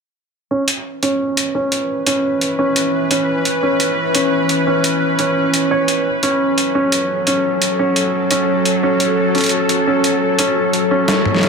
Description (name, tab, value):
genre	half-time drum and bass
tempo	173 BPM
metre	4/4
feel	half-time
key	C# minor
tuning	A4 = 437 Hz
part	bowed-like drone	sustained chords	1.5-11.5 s	E3 to B4	-18 LUFS	left 1 dB	built-in reverb
part	felt-muted upright piano	arpeggios	0.5-11.5 s	C#4 to C#5	-18 LUFS	right 1 dB	vintage 12-bit sampler grit, low-pass filter, tape echo
part	boom bap sampler-style drum kit	drums	0.7-11.5 s	hi-hat, snare drum, toms	-19 LUFS	equal	none
room	moderate lush hall reverb, RT60 1.9 s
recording	none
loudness	-14 LUFS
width	side -5 dB against mid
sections	0.5-11.5 A section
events	filter sweep on felt piano 0.5-11.5; drum fill 11.1-11.5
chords	0.5 C#m7; 6.1 F#m